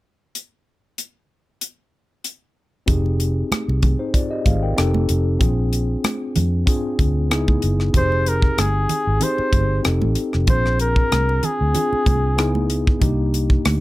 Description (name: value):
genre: lush 1970s-style soul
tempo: 95 BPM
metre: 4/4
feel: swing 54% on 16ths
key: F dorian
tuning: A4 = 440 Hz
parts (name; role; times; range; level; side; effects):
- tight funk drum kit; drums; 0.4-13.8 s; hi-hat, kick drum, rim click; -20 LUFS; equal; none
- mellow tine electric piano; accompaniment; 2.9-13.8 s; Bb3 to G5; -24 LUFS; left 2 dB; medium stereo tremolo
- vintage muted fingered electric bass; bass; 2.9-13.8 s; F1 to F2; -20 LUFS; equal; none
- congas; percussion; 2.9-13.8 s; none; -28 LUFS; right 5 dB; none
- warm flugelhorn; melody; 8.0-12.7 s; Ab4 to C5; -22 LUFS; equal; slapback echo
room: little or no reverb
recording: none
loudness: -17 LUFS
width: side -17 dB against mid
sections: 0.3-2.9 A section; 2.9-7.9 B section; 7.9-13.8 C section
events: none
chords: 0.3 N.C.; 2.9 Fm9; 4.8 F9; 5.4 Bb9; 7.3 Dbm9; 7.9 Fm9; 9.8 F9; 10.5 Bb9; 12.4 Dbm9; 13.0 Cm9